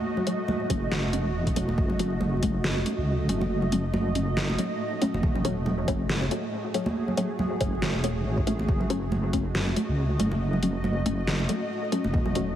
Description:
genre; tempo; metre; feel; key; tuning
deep dubstep; 139 BPM; 4/4; swing 56% on 16ths, half-time; F# dorian; A4 = 437 Hz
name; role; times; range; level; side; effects
granular cloud pad; sustained chords; 0.0-12.6 s; A3 to D#5; -31 LUFS; right 1 dB; built-in reverb
congas; percussion; 0.2-12.3 s; none; -32 LUFS; right 2 dB; dub echo
filtered dub chord stab; stabs; 0.3-12.5 s; F#3 to C#4; -31 LUFS; left 2 dB; phaser, wide subtle chorus, dub echo
dubstep drum kit; drums; 0.3-12.5 s; hi-hat, snare drum; -32 LUFS; equal; none
deep soft wobble bass; bass; 0.7-12.6 s; E1 to C#2; -28 LUFS; equal; chorus
electronic kick drum; drums; 0.7-2.5, 5.2-9.4, 12.1-12.2 s; none; -28 LUFS; equal; overdrive
room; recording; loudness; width
light reverb, digital ambience; heavily compressed radio sound, vinyl crackle; -24 LUFS; side -11 dB against mid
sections
0.0-12.6 A section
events
none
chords
0.0 F#m

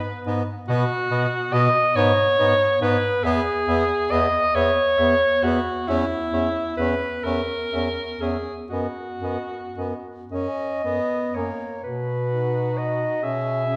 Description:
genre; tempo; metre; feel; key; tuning
classical, lyrical piece for single-reed quartet; 36-48 BPM (dotted quarters); 6/8; rubato; B major; A4 = 438 Hz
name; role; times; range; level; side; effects
warm alto saxophone; second line; 0.0-13.8 s; E4 to D#5; -24 LUFS; equal; none
warm clarinet; melody; 0.3-13.8 s; B4 to E5; -32 LUFS; equal; none
warm tenor saxophone; accompaniment; 0.3-13.8 s; A#3 to D#4; -32 LUFS; equal; none
warm bass clarinet; bass; 0.3-13.8 s; E2 to B2; -29 LUFS; equal; none
room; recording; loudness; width
wet recital hall reverb, RT60 1.4 s; recorded in a church or concert hall; -22 LUFS; mono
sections
0.0-11.8 A section; 11.8-13.8 B section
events
none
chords
0.0 G#m; 0.7 B; 2.0 G#m; 3.2 E; 5.9 C#m/E; 8.7 B/F#; 10.3 F#; 11.8 B; 13.2 C#m7/B

